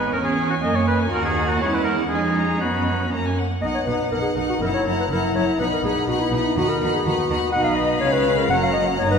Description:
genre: quick classical-period movement for symphony orchestra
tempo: 122 BPM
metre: 2/4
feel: straight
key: B major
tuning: A4 = 435 Hz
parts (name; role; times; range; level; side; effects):
- rich chamber violin section; melody; 0.0-9.2 s; F#5 to B5; -30 LUFS; left 2 dB; none
- rich chamber violin section; second line; 0.0-9.2 s; C#4 to A#5; -29 LUFS; left 5 dB; none
- warm oboe; second line; 0.0-3.1 s; F#4 to D#5; -24 LUFS; right 1 dB; none
- warm studio viola section; accompaniment; 0.0-9.2 s; G#3 to E4; -26 LUFS; right 2 dB; none
- clear chamber double bass section; bass; 0.0-9.2 s; F#1 to F#2; -27 LUFS; right 2 dB; none
- rich studio cello section; bass; 0.0-9.2 s; F#2 to F#4; -28 LUFS; right 3 dB; none
- mellow clarinet; second line; 3.6-9.2 s; D#4 to F#5; -23 LUFS; left 2 dB; none
- mellow French horn section; sustained chords; 3.6-9.2 s; G#3 to F#4; -27 LUFS; left 2 dB; none
room: wet concert hall reverb, RT60 2.3 s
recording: recorded in a church or concert hall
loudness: -18 LUFS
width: side -6 dB against mid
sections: 0.0-3.6 A section; 3.6-9.2 A section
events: none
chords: 0.1 C#m/E; 0.6 F#; 1.1 D#madd11; 1.6 C#m/E; 2.1 C#/E#; 2.6 F#sus4; 3.1 F#; 3.6 B; 4.6 F#7; 5.6 B; 6.6 B/D#; 7.5 B; 8.0 C#7; 8.5 F#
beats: 0.13 | 0.62 1.11 | 1.60 2.10 | 2.60 3.11 | 3.62 4.11 | 4.61 5.10 | 5.59 6.08 | 6.56 7.05 | 7.53 8.02 | 8.50 8.99

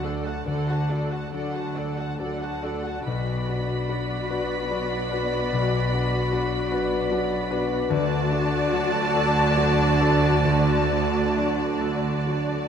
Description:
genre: cinematic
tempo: 66-76 BPM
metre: 3/4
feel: rubato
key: unclear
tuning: A4 = 440 Hz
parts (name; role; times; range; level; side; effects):
- muted studio violin section; melody; 0.0-12.7 s; F#5 to B5; -30 LUFS; left 1 dB; none
- muted symphonic violin section; second line; 0.0-12.7 s; D5 to F#5; -31 LUFS; left 2 dB; none
- muted symphonic viola section; accompaniment; 0.0-12.7 s; F#4 to A4; -31 LUFS; left 1 dB; none
- warm concert grand piano; accompaniment; 0.0-12.7 s; B1 to F#4; -29 LUFS; left 2 dB; none
- concert harp; arpeggios; 0.0-12.7 s; B2 to D5; -32 LUFS; left 10 dB; none
- muted symphonic cello section; bass; 0.0-12.7 s; B2 to D3; -29 LUFS; right 4 dB; none
- muted symphonic double bass section; bass; 0.0-12.7 s; B1 to D2; -29 LUFS; right 4 dB; none
room: moderate scoring stage reverb, RT60 2.2 s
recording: none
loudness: -22 LUFS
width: side -8 dB against mid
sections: 0.0-12.7 A section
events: none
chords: 0.0 D; 3.1 Bm; 7.9 D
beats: | 0.47 1.33 2.20 | 3.06 3.90 4.71 | 5.53 6.33 7.12 | 7.92 8.73 9.57 | 10.45 11.36 12.25

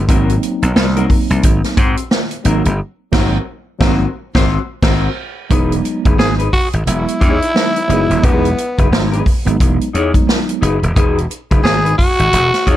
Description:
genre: funk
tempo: 88 BPM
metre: 4/4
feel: swing 60% on 16ths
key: unclear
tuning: A4 = 440 Hz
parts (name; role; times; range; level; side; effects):
- slap bass; bass; 0.0-12.8 s; D#1 to Ab2; -16 LUFS; equal; none
- mellow electric guitar; accompaniment; 0.1-12.8 s; C4 to Db5; -21 LUFS; left 5 dB; tremolo
- mellow tine electric piano; stabs; 0.1-10.7 s; Gb3 to E4; -19 LUFS; right 2 dB; medium stereo tremolo
- swinging big-band drum kit; drums; 0.1-12.8 s; crash cymbal, hi-hat, kick drum, snare drum; -15 LUFS; equal; none
- growling tenor saxophone; melody; 6.2-12.8 s; B3 to G#4; -16 LUFS; equal; none
room: light reverb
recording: dark, warm production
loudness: -12 LUFS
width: side -13 dB against mid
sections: 0.0-5.5 A section; 5.5-12.8 B section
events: band accent 2.8-5.5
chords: 0.0 Ab9; 5.5 Emaj7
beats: | 0.09 0.76 1.44 2.12 | 2.79 3.47 4.15 4.83 | 5.51 6.19 6.87 7.55 | 8.23 8.91 9.60 10.28 | 10.96 11.64 12.32

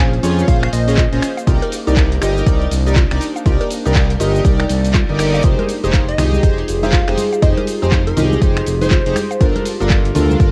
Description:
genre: deep house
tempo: 121 BPM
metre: 4/4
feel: swing 61% on 16ths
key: F minor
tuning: A4 = 440 Hz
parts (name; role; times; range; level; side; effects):
- plucky unison lead; melody; 0.0-1.2, 6.1-9.5 s; Bb4 to F5; -28 LUFS; equal; cassette tape, analog delay
- warbly tape-like pad; sustained chords; 0.2-10.5 s; Bb3 to D5; -28 LUFS; equal; chorus, built-in reverb, phaser, sidechain pumping
- mallet-like synth pluck; arpeggios; 0.0-10.2 s; F4 to F5; -31 LUFS; equal; chorus, vintage 12-bit sampler grit, sidechain pumping, analog delay
- chorused polysynth; stabs; 0.0-10.5 s; Db4 to Eb5; -23 LUFS; equal; cassette tape, sidechain pumping, analog delay
- smooth synth bass; bass; 0.0-10.5 s; F1 to F2; -20 LUFS; equal; tube saturation
- punchy analog drum machine; drums; 0.1-10.5 s; finger snaps, handclaps, hi-hat, shaker; -27 LUFS; equal; cassette tape
- electronic kick drum; drums; 0.5-10.5 s; none; -17 LUFS; equal; overdrive, cassette tape
- reverse cymbal; sound effects; 4.8-5.4 s; none; -32 LUFS; equal; none
- congas; percussion; 5.6-10.4 s; none; -27 LUFS; equal; sidechain pumping on perc
room: digital ambience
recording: home recording on cassette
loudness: -15 LUFS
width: mono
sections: 0.0-10.5 A section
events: reverse cymbal 4.8-5.4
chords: 0.0 Bbm9; 1.5 Cm9; 5.4 Fm9; 9.4 Gm9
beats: 0.48 0.98 | 1.47 1.97 2.46 2.96 | 3.46 3.95 4.45 4.94 | 5.44 5.94 6.43 6.93 | 7.42 7.92 8.41 8.91 | 9.41 9.90 10.40

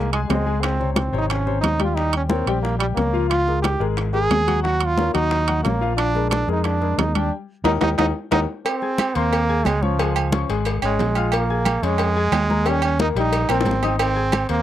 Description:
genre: latin, salsa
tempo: 180 BPM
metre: 4/4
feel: straight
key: Ab major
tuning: A4 = 441 Hz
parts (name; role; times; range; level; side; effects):
- brilliant trombone; melody; 0.0-14.6 s; F3 to Ab4; -22 LUFS; right 3 dB; none
- clear concert grand piano; accompaniment; 0.0-14.6 s; C3 to Ab6; -26 LUFS; left 9 dB; none
- fingered electric bass; bass; 0.0-14.6 s; Ab1 to F2; -23 LUFS; equal; none
- bongos and cowbell; percussion; 0.1-14.6 s; none; -30 LUFS; left 6 dB; none
- congas; percussion; 0.1-14.6 s; none; -26 LUFS; left 1 dB; none
- timbales and agogo bells; percussion; 0.1-14.5 s; none; -26 LUFS; right 9 dB; none
room: light reverb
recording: dry, close 1970s-style studio recording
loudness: -18 LUFS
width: side -12 dB against mid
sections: 0.0-8.7 A section; 8.7-14.6 B section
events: drum fill 7.3-8.7, 13.5-14.0; band accent 7.3-8.7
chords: 0.0 Fm7 (rootless); 0.6 Db5; 2.0 Eb7; 3.3 Db6; 4.6 Ebm7; 6.0 Bb7; 7.3 Eb; 8.7 Ab; 10.0 Db; 11.3 Bbm7; 12.7 Eb; 14.0 Ab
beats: 0.31 | 0.64 0.97 1.31 1.64 | 1.98 2.31 2.64 2.98 | 3.31 3.65 3.98 4.31 | 4.65 4.98 5.32 5.65 | 5.98 6.32 6.65 6.99 | 7.32 7.65 7.99 8.32 | 8.66 8.99 9.32 9.66 | 9.99 10.33 10.66 10.99 | 11.33 11.66 11.99 12.33 | 12.66 13.00 13.33 13.66 | 14.00 14.33

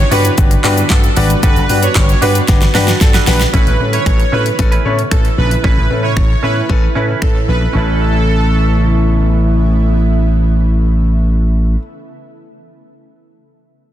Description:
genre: dance-pop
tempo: 114 BPM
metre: 4/4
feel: straight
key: A mixolydian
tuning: A4 = 440 Hz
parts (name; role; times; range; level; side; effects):
- soft supersaw; melody; 0.0-9.3 s; A4 to C#5; -20 LUFS; right 3 dB; sidechain pumping, tape echo
- shimmering ambient pad; sustained chords; 0.0-11.7 s; C#3 to F#4; -23 LUFS; right 1 dB; chorus, built-in reverb, sidechain pumping
- direct-recorded clean electric guitar; riff; 0.0-11.8 s; C#4 to B4; -23 LUFS; right 6 dB; lush chorus
- slap bass with an envelope filter; bass; 0.0-11.7 s; G1 to A2; -14 LUFS; equal; sidechain pumping
- warm grand piano; accompaniment; 0.1-11.8 s; C#4 to D5; -21 LUFS; left 6 dB; sidechain pumping
- pop drum kit; drums; 0.1-7.3 s; finger snaps, handclaps, hi-hat, kick drum, shaker, snare drum; -13 LUFS; equal; none
room: little or no reverb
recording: dense, heavily limited modern master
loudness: -10 LUFS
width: side -12 dB against mid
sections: 0.0-3.5 A section; 3.5-7.7 B section; 7.7-12.0 C section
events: drop 0.0-3.5; drum fill 2.5-3.5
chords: 0.0 Gmaj7; 3.5 Aadd9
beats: 0.38 0.91 | 1.43 1.96 2.48 3.01 | 3.54 4.06 4.59 5.12 | 5.64 6.17 6.70 7.22 | 7.75 8.27 8.80 9.33 | 9.85 10.38 10.90 11.43

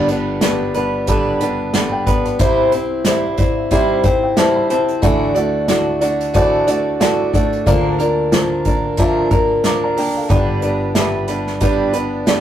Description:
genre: piano-driven pop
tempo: 91 BPM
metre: 4/4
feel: swing 56% on 16ths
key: G major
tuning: A4 = 438 Hz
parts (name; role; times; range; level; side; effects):
- dark concert grand piano; accompaniment; 0.0-12.4 s; G1 to D6; -20 LUFS; left 1 dB; none
- picked steel-string acoustic guitar; riff; 0.0-12.4 s; G2 to D5; -17 LUFS; equal; none
- unplugged drum kit; drums; 0.1-12.4 s; hi-hat, kick drum, snare drum; -19 LUFS; equal; none
room: moderate booth ambience, RT60 0.3 s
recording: rough rehearsal-room recording, tube saturation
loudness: -14 LUFS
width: side -10 dB against mid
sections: 0.0-12.4 A section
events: grand piano fill 3.1-5.0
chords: 0.0 G; 2.4 C; 5.0 Dadd9; 7.7 Bb/D; 10.3 G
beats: 0.42 1.08 1.74 | 2.40 3.06 3.71 4.37 | 5.03 5.69 6.35 7.01 | 7.66 8.32 8.98 9.64 | 10.30 10.96 11.61 12.27

